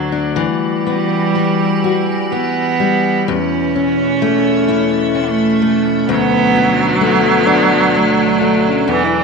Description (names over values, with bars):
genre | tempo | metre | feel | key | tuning
celtic folk, Celtic slow air | 64 BPM | 3/4 | rubato | E dorian | A4 = 442 Hz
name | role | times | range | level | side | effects
clear viola | second line | 0.0-0.4, 6.1-9.2 s | E3 to F#3 | -16 LUFS | right 3 dB | none
fingerpicked steel-string acoustic guitar | accompaniment | 0.0-9.2 s | D2 to F#4 | -17 LUFS | left 10 dB | none
icy glass pad | sustained chords | 0.0-9.2 s | E2 to F#4 | -20 LUFS | left 2 dB | chorus, built-in reverb
rich cello | melody | 0.3-9.2 s | G3 to E4 | -17 LUFS | right 10 dB | none
room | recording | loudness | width
moderate echo chamber reverb, RT60 1.6 s, studio reverb | 1960s-style stereo with parts hard left and right | -12 LUFS | side -4 dB against mid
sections
0.4-9.2 A section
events
none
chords
0.4 Emadd9; 3.3 Aadd9/E; 6.1 D6